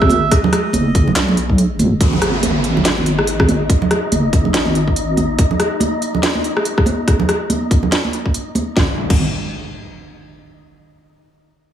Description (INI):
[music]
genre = deep dubstep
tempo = 142 BPM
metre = 4/4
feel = swing 59% on 16ths, half-time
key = G# minor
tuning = A4 = 439 Hz
[part]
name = melodica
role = melody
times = 0.0-1.1 s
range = D#5 to E5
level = -22 LUFS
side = right 7 dB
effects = dub echo
[part]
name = deep soft wobble bass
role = bass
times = 0.0-5.4, 8.8-9.3 s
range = F#1 to B1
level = -18 LUFS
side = equal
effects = chorus
[part]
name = electronic kick drum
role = drums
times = 0.0-9.2 s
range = none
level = -16 LUFS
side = equal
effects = none
[part]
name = garage drum kit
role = drums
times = 0.0-9.2 s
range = crash cymbal, handclaps, hi-hat, rim click, snare drum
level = -19 LUFS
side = equal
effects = none
[part]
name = wind-like tuned noise texture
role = texture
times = 0.0-8.8 s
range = G#3 to D#5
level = -26 LUFS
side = left 2 dB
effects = built-in reverb
[part]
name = congas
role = percussion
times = 0.1-8.7 s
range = none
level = -20 LUFS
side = right 3 dB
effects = dub echo
[part]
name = downlifter and impact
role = sound effects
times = 2.0-5.4, 8.8-10.5 s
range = none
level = -24 LUFS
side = equal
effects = none
[sound]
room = light reverb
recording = small room ambience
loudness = -14 LUFS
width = side -10 dB against mid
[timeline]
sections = 0.0-2.0 A section; 2.0-8.8 B section; 8.8-10.5 C section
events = drop 0.0-2.0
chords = 0.0 G#5; 8.8 N.C.